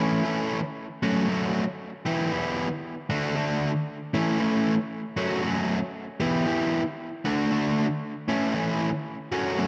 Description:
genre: rock.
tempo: 116 BPM.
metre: 4/4.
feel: straight.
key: D major.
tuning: A4 = 440 Hz.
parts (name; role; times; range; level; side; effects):
fuzz guitar; solo; 0.0-9.7 s; D3 to G4; -27 LUFS; equal; distortion, analog delay.
room: moderate spring reverb, RT60 1.3 s.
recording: dark, warm production.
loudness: -27 LUFS.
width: mono.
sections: 0.0-9.7 A section.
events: none.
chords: 0.0 A; 0.8 F#m; 1.8 Em; 2.8 D; 3.9 A; 4.9 F#m; 6.0 Em; 7.0 D; 8.0 A; 9.1 F#m.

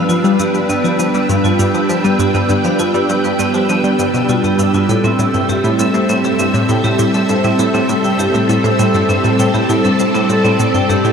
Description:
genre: ambient, sequencer-driven space music.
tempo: 100 BPM.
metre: 4/4.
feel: straight.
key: unclear.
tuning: A4 = 439 Hz.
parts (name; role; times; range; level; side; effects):
string machine, full ensemble; sustained chords; 0.0-11.1 s; G3 to G5; -15 LUFS; equal; ensemble chorus.
vibraphone with hard mallets; arpeggios; 0.0-11.1 s; B3 to G5; -19 LUFS; right 1 dB; auto-pan, ping-pong delay.
bubbling stepped-filter texture; texture; 0.0-11.1 s; E6; -25 LUFS; right 1 dB; chorus, built-in reverb.
analog pluck; riff; 0.1-11.1 s; G2 to G3; -17 LUFS; equal; chorus, ping-pong delay.
cabasa and woodblock; percussion; 0.1-11.1 s; none; -29 LUFS; left 1 dB; ping-pong delay.
room: wet huge ambient reverb, RT60 7.4 s.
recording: none.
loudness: -12 LUFS.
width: side -6 dB against mid.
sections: 0.0-11.1 A section.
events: none.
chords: 0.0 G7; 4.9 Am7.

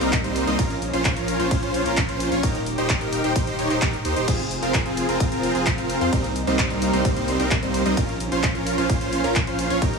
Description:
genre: EDM, festival progressive house.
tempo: 130 BPM.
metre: 4/4.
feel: straight.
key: unclear.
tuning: A4 = 438 Hz.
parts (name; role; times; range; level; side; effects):
lush unison pad; sustained chords; 0.0-10.0 s; C3 to Ab4; -29 LUFS; equal; chorus, vintage 12-bit sampler grit, sidechain pumping.
supersaw chords; riff; 0.0-10.0 s; G3 to Eb5; -23 LUFS; right 1 dB; sidechain pumping, dub echo.
saturated sub bass; bass; 0.0-10.0 s; Eb1 to F2; -31 LUFS; equal; tube saturation, sidechain pumping.
big-room dance drum kit; drums; 0.0-10.0 s; crash cymbal, handclaps, hi-hat, ride cymbal; -28 LUFS; equal; none.
electronic kick drum; drums; 0.1-9.9 s; none; -24 LUFS; equal; none.
room: light reverb.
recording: none.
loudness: -20 LUFS.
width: side -4 dB against mid.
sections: 0.0-10.0 A section.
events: none.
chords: 0.0 Cm7; 0.6 Bbm; 2.4 Eb; 4.3 Fm; 6.1 Cm7; 8.0 Bbm.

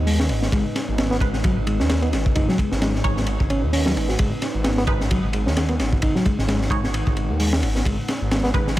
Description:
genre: breakbeat, breaks.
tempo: 131 BPM.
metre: 4/4.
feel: swing 56% on 16ths.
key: unclear.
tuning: A4 = 440 Hz.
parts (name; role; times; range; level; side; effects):
deep dark ambient pad; sustained chords; 0.0-8.8 s; Ab3 to Gb5; -31 LUFS; equal; chorus, built-in reverb, vintage 12-bit sampler grit, sidechain pumping.
detuned saw bass; bass; 0.0-8.8 s; Ab1 to Eb2; -23 LUFS; equal; tube saturation.
mellow reed electric piano; riff; 0.1-8.8 s; Gb3 to Gb4; -26 LUFS; equal; low-pass filter, digital delay.
crunchy breakbeat drum kit; drums; 0.1-8.8 s; hi-hat, kick drum, ride cymbal, snare drum; -22 LUFS; equal; none.
filtered dub chord stab; stabs; 1.2-8.7 s; Ab3 to Db5; -30 LUFS; right 2 dB; phaser, digital delay.
room: little or no reverb.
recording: none.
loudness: -19 LUFS.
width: side -15 dB against mid.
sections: 0.0-8.8 A section.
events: none.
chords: 0.0 Abm.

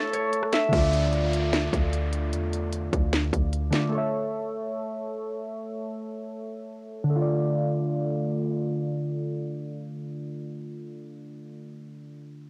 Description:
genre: hip hop, trap.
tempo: 150 BPM.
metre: 4/4.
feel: half-time.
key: D harmonic minor.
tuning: A4 = 440 Hz.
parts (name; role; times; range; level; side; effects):
concert harp; melody; 0.0-2.3 s; A4 to E5; -31 LUFS; equal; low-pass filter, cassette tape.
glassy digital keys; accompaniment; 0.0-12.5 s; D3 to E5; -31 LUFS; equal; chorus, low-pass filter, cassette tape.
dark studio string section; sustained chords; 0.0-0.7 s; A3 to E5; -40 LUFS; equal; cassette tape.
trap drum kit; drums; 0.1-3.8 s; handclaps, hi-hat, kick drum, rim click, snare drum; -29 LUFS; equal; none.
warm 808-style bass; bass; 0.7-3.7 s; D2 to E2; -30 LUFS; equal; none.
downlifter; sound effects; 0.7-3.9 s; none; -40 LUFS; equal; none.
room: light reverb.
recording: home recording on cassette.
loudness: -27 LUFS.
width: mono.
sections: 0.7-7.1 A section; 7.1-10.3 B section.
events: break 0.0-0.7; filter sweep on synth keys 0.7-7.1.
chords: 0.0 A; 0.7 Dm; 3.9 A; 7.1 Dm.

